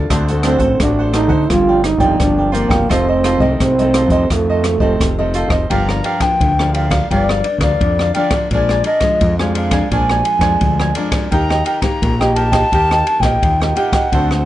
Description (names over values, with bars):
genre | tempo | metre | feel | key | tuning
samba and choro | 86 BPM | 4/4 | straight | G minor from 5.7 s | A4 = 440 Hz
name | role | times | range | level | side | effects
cavaquinho | accompaniment | 0.0-14.5 s | D4 to Ab5 | -21 LUFS | right 2 dB | none
nylon-string guitar | accompaniment | 0.0-14.5 s | F2 to G4 | -22 LUFS | left 3 dB | none
growling fingered electric bass | bass | 0.0-14.4 s | F1 to D3 | -18 LUFS | equal | overdrive
open jazz drum kit | drums | 0.1-14.5 s | hi-hat, kick drum, ride cymbal, rim click | -19 LUFS | equal | none
growling trombone | second line | 0.5-5.3 s | A3 to F4 | -16 LUFS | right 3 dB | none
baroque flute | melody | 5.7-14.5 s | D5 to Bb5 | -18 LUFS | left 1 dB | none
room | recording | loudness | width
light reverb | nothing above 10.5 kHz | -12 LUFS | side -14 dB against mid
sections
0.0-5.7 A section; 5.7-14.5 B section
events
trombone solo 0.0-5.7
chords
0.1 D7; 1.5 Gm7; 2.9 F7; 5.7 Gm7; 8.5 Bb7; 11.3 Eb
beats
| 0.11 0.81 1.50 2.20 | 2.90 3.60 4.30 5.00 | 5.71 6.41 7.11 7.81 | 8.51 9.21 9.92 10.62 | 11.32 12.02 12.72 13.42 | 14.12